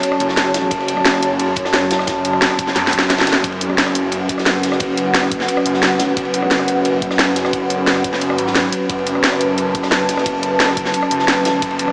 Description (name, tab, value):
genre	dark technical drum and bass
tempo	176 BPM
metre	4/4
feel	straight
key	F# minor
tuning	A4 = 442 Hz
part	dark analog pad	sustained chords	0.0-11.9 s	F#3 to A5	-17 LUFS	equal	chorus, sidechain pumping
part	crunchy breakbeat drum kit	drums	0.0-11.9 s	ride cymbal, snare drum	-25 LUFS	equal	high-pass filter on cymbals, high-pass filter on snare, high-pass filter on room
part	drum and bass drum kit	drums	0.0-11.9 s	hi-hat, rim click, snare drum	-18 LUFS	equal	none
part	phased detuned saw bass	bass	0.2-11.9 s	F#1 to F#2	-25 LUFS	equal	phaser, overdrive, sidechain pumping
part	electronic kick drum	drums	0.7-11.7 s	none	-26 LUFS	equal	none
room	wet cathedral reverb, RT60 5.2 s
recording	dreamy mix soaked in reverb, small speaker sound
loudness	-14 LUFS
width	side -38 dB against mid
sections	0.0-11.9 A section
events	drum fill 2.8-3.4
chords	0.0 F#5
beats	0.03 0.37 | 0.71 1.05 1.40 1.74 | 2.08 2.42 2.76 3.10 | 3.44 3.78 4.12 4.46 | 4.80 5.15 5.49 5.83 | 6.17 6.51 6.85 7.19 | 7.53 7.87 8.21 8.55 | 8.90 9.24 9.58 9.92 | 10.26 10.60 10.94 11.28 | 11.62